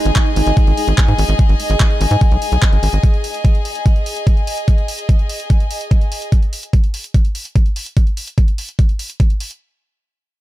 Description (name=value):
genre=psychedelic trance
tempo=146 BPM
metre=4/4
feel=straight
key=unclear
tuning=A4 = 440 Hz
part: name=pulsing gated texture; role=sustained chords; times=0.0-3.1 s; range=G#3 to D#4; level=-26 LUFS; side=right 4 dB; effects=chorus, built-in reverb, sidechain pumping
part: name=bright chamber string section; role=texture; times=0.0-6.3 s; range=G#4 to G#5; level=-22 LUFS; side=left 2 dB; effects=sidechain pumping
part: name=tight sequencer bass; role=bass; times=0.1-3.0 s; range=G#1 to G#2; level=-14 LUFS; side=equal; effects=none
part: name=drum and bass drum kit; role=drums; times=0.1-9.6 s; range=handclaps, hi-hat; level=-25 LUFS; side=equal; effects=overdrive
part: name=electronic kick drum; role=drums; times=0.2-9.3 s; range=none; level=-13 LUFS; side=equal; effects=overdrive
room=little or no reverb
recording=dark, warm production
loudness=-13 LUFS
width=side -16 dB against mid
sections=0.0-9.6 A section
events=filter sweep on synth texture 0.0-3.0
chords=0.0 G#5; 9.6 N.C.